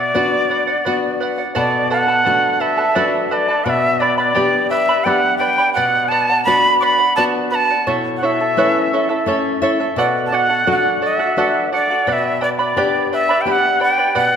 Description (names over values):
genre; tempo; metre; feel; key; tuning
andean folk, Andean ensemble; 86 BPM; 3/4; straight; unclear; A4 = 439 Hz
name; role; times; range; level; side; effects
bright quena; melody; 0.0-14.4 s; D5 to D6; -16 LUFS; right 1 dB; none
charango; accompaniment; 0.0-14.4 s; E4 to B5; -19 LUFS; right 2 dB; none
nylon-string guitar; accompaniment; 0.0-14.4 s; B2 to E5; -22 LUFS; left 4 dB; none
room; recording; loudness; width
wet concert hall reverb, RT60 1.6 s; recorded in a church or concert hall; -14 LUFS; side -7 dB against mid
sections
0.0-1.6 A section; 1.6-14.4 A section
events
nylon-string guitar fill 8.9-10.0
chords
0.0 Bm; 1.6 D/B; 3.7 G/B; 5.8 Bm; 7.9 A/B; 10.0 D/B; 12.1 G/B